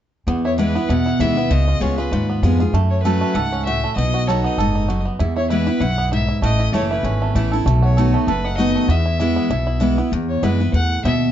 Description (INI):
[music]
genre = bluegrass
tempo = 195 BPM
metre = 4/4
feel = swing 55% on 8ths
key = E major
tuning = A4 = 439 Hz
[part]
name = bluegrass banjo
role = melody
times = 0.3-11.1 s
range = A3 to A4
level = -26 LUFS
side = right 5 dB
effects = none
[part]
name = picked steel-string acoustic guitar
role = accompaniment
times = 0.3-11.3 s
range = E2 to G#4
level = -20 LUFS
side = left 1 dB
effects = none
[part]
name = upright bass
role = bass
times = 0.3-11.3 s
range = F#1 to F#2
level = -20 LUFS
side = equal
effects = none
[part]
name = rich fiddle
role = melody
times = 0.4-11.3 s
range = B4 to F#5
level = -25 LUFS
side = left 3 dB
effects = none
[sound]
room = light reverb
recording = dark, warm production, nothing above 7.8 kHz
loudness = -16 LUFS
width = side -10 dB against mid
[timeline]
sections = 0.3-10.1 A section; 10.1-11.3 A section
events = none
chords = 0.3 E; 1.5 C#7; 2.7 F#m; 4.0 B; 5.2 E; 6.4 A; 7.7 B7; 8.9 E